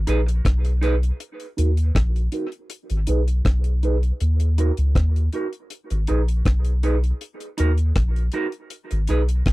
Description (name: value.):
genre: dub reggae.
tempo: 80 BPM.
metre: 4/4.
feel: straight.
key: Eb minor.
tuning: A4 = 443 Hz.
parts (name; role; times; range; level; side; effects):
soft dub sub bass; bass; 0.0-9.5 s; Ab1 to Eb2; -19 LUFS; equal; none.
semi-hollow electric guitar; accompaniment; 0.1-9.2 s; Eb4 to Cb5; -27 LUFS; right 3 dB; low-pass filter, dub echo.
deep reggae drum kit; drums; 0.1-9.5 s; hi-hat, kick drum, rim click; -24 LUFS; equal; none.
room: little or no reverb.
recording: dry, close 1970s-style studio recording.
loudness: -19 LUFS.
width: side -20 dB against mid.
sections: 0.0-1.2 A section; 1.2-9.5 B section.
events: filter sweep on clean electric guitar 1.2-9.5.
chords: 0.0 Abm; 1.2 Ebm; 2.7 Abm; 4.2 Ebm; 5.7 Abm; 7.2 Ebm; 8.7 Abm.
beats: 0.44 | 1.20 1.95 2.70 3.45 | 4.20 4.95 5.71 6.46 | 7.21 7.96 8.71 9.46.